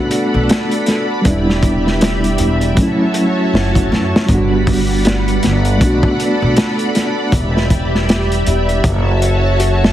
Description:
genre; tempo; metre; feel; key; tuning
trip hop; 79 BPM; 4/4; swing 59% on 16ths; E dorian; A4 = 438 Hz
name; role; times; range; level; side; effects
mellow reed electric piano; accompaniment; 0.0-7.3 s; F#3 to F#4; -17 LUFS; right 1 dB; fast tremolo, tape echo
string machine, cellos; sustained chords; 0.0-9.9 s; G3 to B5; -19 LUFS; equal; ensemble chorus
crunchy breakbeat drum kit; drums; 0.1-9.9 s; hi-hat, kick drum, snare drum; -16 LUFS; equal; none
upright bass; bass; 0.3-9.9 s; E1 to F#2; -17 LUFS; equal; tube saturation
room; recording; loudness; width
studio reverb; heavily compressed radio sound, multiband compression, vinyl crackle; -12 LUFS; side -12 dB against mid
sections
0.0-9.9 A section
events
none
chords
0.0 Bm7; 1.2 Em7; 2.8 F#m7; 4.3 Gmaj7; 5.8 Bm7; 7.3 Em7; 8.8 F#m7

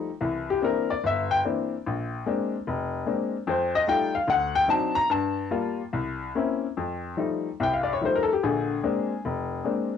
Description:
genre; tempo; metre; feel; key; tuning
solo jazz; 147 BPM; 4/4; swing 67% on 8ths, rubato; unclear; A4 = 441 Hz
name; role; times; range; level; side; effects
clear upright piano; solo; 0.0-9.9 s; F1 to Bb5; -24 LUFS; left 4 dB; cassette tape
room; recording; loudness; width
light reverb; home recording on cassette; -24 LUFS; side -8 dB against mid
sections
0.0-6.8 A section; 6.8-10.0 A section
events
upright piano solo 0.0-6.8, 6.8-10.0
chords
0.2 C9; 1.9 Bb9; 3.5 F9; 4.3 D7b9; 5.1 Gm7; 5.9 C7b9; 6.8 F9; 8.4 Bb9

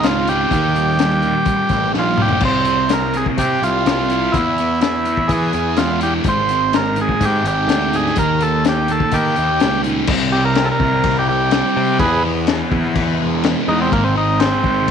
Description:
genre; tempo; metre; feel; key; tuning
psychedelic rock; 125 BPM; 4/4; straight; unclear; A4 = 439 Hz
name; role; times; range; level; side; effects
combo organ; melody; 0.0-14.9 s; Bb3 to C5; -18 LUFS; right 1 dB; slapback echo
fuzz guitar; riff; 0.0-14.9 s; E2 to Ab4; -20 LUFS; right 1 dB; distortion, phaser
fuzz picked electric bass; bass; 0.0-14.9 s; Ab1 to E3; -22 LUFS; right 1 dB; overdrive
crunchy breakbeat drum kit; drums; 0.0-14.9 s; crash cymbal, hi-hat, kick drum, snare drum, toms; -21 LUFS; left 5 dB; none
room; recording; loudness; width
light reverb, small room ambience; 1960s-style stereo; -14 LUFS; side -7 dB against mid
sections
0.0-2.4 A section; 2.4-10.1 B section; 10.1-14.9 C section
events
drum fill 2.0-2.4; transistor combo organ solo 10.1-14.9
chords
0.0 Ab; 0.5 Eb; 2.4 C; 4.4 E; 6.3 Ab; 8.2 Eb; 10.1 C; 12.0 E; 13.9 Ab

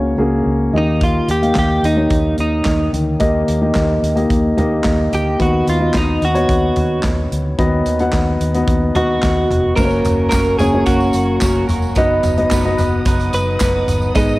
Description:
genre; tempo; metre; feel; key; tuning
piano-driven pop; 110 BPM; 4/4; straight; unclear; A4 = 439 Hz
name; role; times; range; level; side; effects
dark upright piano; accompaniment; 0.0-14.4 s; Ab2 to Gb5; -17 LUFS; left 1 dB; cassette tape
vintage muted fingered electric bass; bass; 0.0-14.4 s; F1 to Eb2; -20 LUFS; equal; none
direct-recorded clean electric guitar; melody; 0.8-14.4 s; Eb4 to Eb5; -18 LUFS; right 1 dB; analog chorus, cassette tape
modern studio drum kit; drums; 1.0-14.3 s; crash cymbal, handclaps, hi-hat, kick drum, snare drum, toms; -20 LUFS; equal; cassette tape
muted studio string section; sustained chords; 9.8-14.4 s; Cb4 to Eb6; -30 LUFS; left 1 dB; cassette tape
clean electric guitar; riff; 9.8-14.4 s; Ab2 to Cb5; -24 LUFS; right 4 dB; cassette tape
tambourine; percussion; 9.8-14.4 s; none; -34 LUFS; right 4 dB; none
room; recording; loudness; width
light reverb, small room ambience; home recording on cassette; -13 LUFS; side -19 dB against mid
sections
0.0-9.8 A section; 9.8-14.4 B section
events
none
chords
0.0 Gb; 0.7 Eb; 5.4 Cb; 9.8 Gb; 12.0 Cb/Gb

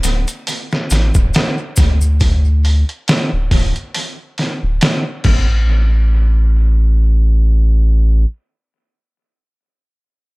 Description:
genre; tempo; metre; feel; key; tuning
trip hop; 69 BPM; 4/4; swing 56% on 16ths; unclear; A4 = 441 Hz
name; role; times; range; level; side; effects
round analog bass; bass; 0.0-8.3 s; D1 to D2; -12 LUFS; equal; tube saturation
trip hop sampler-style drum kit; drums; 0.0-5.4 s; crash cymbal, hi-hat, kick drum, snare drum; -16 LUFS; equal; overdrive, studio reverb, tape echo
maracas; percussion; 0.0-2.2 s; none; -27 LUFS; left 3 dB; tape echo
room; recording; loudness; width
little or no reverb; echo-heavy mix; -12 LUFS; side -24 dB against mid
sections
0.0-5.7 A section; 5.7-9.2 B section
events
filter sweep on analog synth bass 0.0-5.7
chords
none

